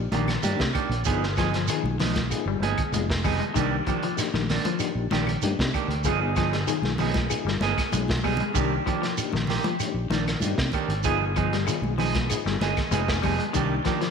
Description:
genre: afrobeat.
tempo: 96 BPM.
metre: 4/4.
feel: straight.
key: C minor.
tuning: A4 = 438 Hz.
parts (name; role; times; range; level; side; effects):
overdriven reed electric piano; accompaniment; 0.0-13.8 s; Bb3 to Ab5; -33 LUFS; left 11 dB; medium tremolo.
fingered electric bass; bass; 0.0-13.8 s; F1 to C3; -28 LUFS; equal; none.
electric guitar at the edge of break-up; arpeggios; 0.1-14.1 s; Eb3 to Ab3; -30 LUFS; left 9 dB; wide subtle chorus.
clean electric guitar; stabs; 0.1-14.1 s; Eb3 to Ab4; -28 LUFS; right 8 dB; spring reverb.
crunchy breakbeat drum kit; drums; 0.1-14.1 s; hi-hat, kick drum, snare drum; -30 LUFS; equal; none.
congas; percussion; 0.1-13.9 s; none; -33 LUFS; equal; none.
shekere; percussion; 0.1-14.0 s; none; -34 LUFS; right 7 dB; none.
claves; percussion; 0.3-14.0 s; none; -42 LUFS; left 10 dB; none.
room: moderate echo chamber reverb, RT60 1.4 s, small room ambience.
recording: 1960s-style stereo with parts hard left and right.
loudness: -22 LUFS.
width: side -6 dB against mid.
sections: 0.0-14.1 A section.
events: drum fill 8.1-8.6; reed electric piano fill 12.3-13.5.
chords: 0.0 Cm9 (rootless); 1.1 G7b9b13; 3.6 Cm9; 6.1 G7b9b13; 8.6 Cm9; 11.0 G7b9b13; 13.5 Cm9.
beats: 0.44 | 1.06 1.69 2.31 2.93 | 3.56 4.18 4.80 5.43 | 6.05 6.68 7.30 7.92 | 8.55 9.17 9.80 10.42 | 11.05 11.67 12.29 12.92 | 13.54.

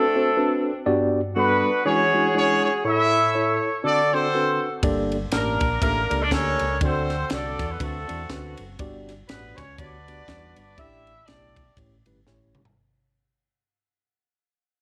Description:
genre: uptempo gospel.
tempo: 121 BPM.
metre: 4/4.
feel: swing 57% on 8ths.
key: D major.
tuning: A4 = 440 Hz.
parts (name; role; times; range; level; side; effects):
clear horn section; melody; 0.0-11.8 s; A3 to E5; -24 LUFS; equal; none.
mellow tine electric piano; accompaniment; 0.0-12.6 s; G2 to A5; -27 LUFS; equal; none.
fingered electric bass; bass; 4.8-12.7 s; F#1 to E2; -33 LUFS; equal; none.
crisp fusion drum kit; drums; 4.8-12.8 s; kick drum, ride cymbal, snare drum, toms; -31 LUFS; equal; none.
room: light reverb, small room reverb.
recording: none.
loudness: -22 LUFS.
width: mono.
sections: 0.0-12.8 A section.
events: fade-out 0.0-12.8; drum fill 12.3-12.8.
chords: 0.0 D7; 0.9 Gmaj7; 1.9 E13; 2.8 A; 3.8 D7; 4.8 Gmadd9; 6.8 D7; 8.8 Gmaj7; 10.8 A7sus4; 11.8 A7.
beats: 0.37 | 0.86 1.36 1.85 2.35 | 2.85 3.34 3.84 4.33 | 4.83 5.32 5.82 6.31 | 6.81 7.30 7.80 8.29 | 8.79 9.28 9.78 10.28 | 10.77 11.27 11.77 12.26.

